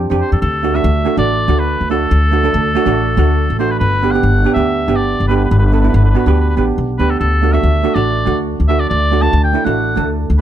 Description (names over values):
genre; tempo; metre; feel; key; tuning
calypso; 141 BPM; 4/4; swing 54% on 16ths; unclear; A4 = 440 Hz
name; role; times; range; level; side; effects
steel pan; accompaniment; 0.0-10.4 s; A3 to A4; -17 LUFS; right 4 dB; none
upright bass; bass; 0.0-10.4 s; G1 to F2; -15 LUFS; left 1 dB; none
warm oboe; melody; 0.2-10.4 s; A4 to A5; -19 LUFS; equal; plate reverb
room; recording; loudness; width
light reverb; close, detailed microphones; -12 LUFS; side -11 dB against mid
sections
0.4-10.4 A section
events
none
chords
0.4 D; 3.8 G; 7.2 D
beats
| 0.42 0.84 1.27 1.69 | 2.12 2.54 2.96 3.39 | 3.81 4.24 4.66 5.09 | 5.51 5.93 6.36 6.78 | 7.21 7.63 8.06 8.48 | 8.91 9.33 9.76 10.18